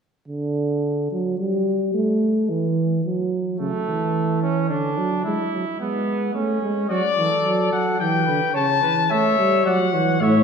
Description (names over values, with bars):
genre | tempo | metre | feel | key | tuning
classical, imitative canzona for brass ensemble | 109 BPM | 3/4 | straight | D major | A4 = 437 Hz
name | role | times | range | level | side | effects
dark euphonium | accompaniment | 0.3-10.4 s | C#3 to A3 | -21 LUFS | right 2 dB | none
mellow trumpet | second line | 3.6-10.4 s | A3 to E5 | -24 LUFS | right 3 dB | none
warm trumpet | melody | 6.9-10.4 s | C#5 to A5 | -20 LUFS | left 7 dB | none
warm tuba | bass | 10.2-10.4 s | A2 | -16 LUFS | equal | none
room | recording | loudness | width
wet scoring stage reverb, RT60 1.6 s | heard from further back in the room | -19 LUFS | side -6 dB against mid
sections
0.3-10.4 A section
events
none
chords
0.3 N.C.; 3.6 A/C#; 4.7 D; 5.2 E; 6.3 A; 6.9 D; 8.0 Em; 8.6 A/C#; 9.7 D/F#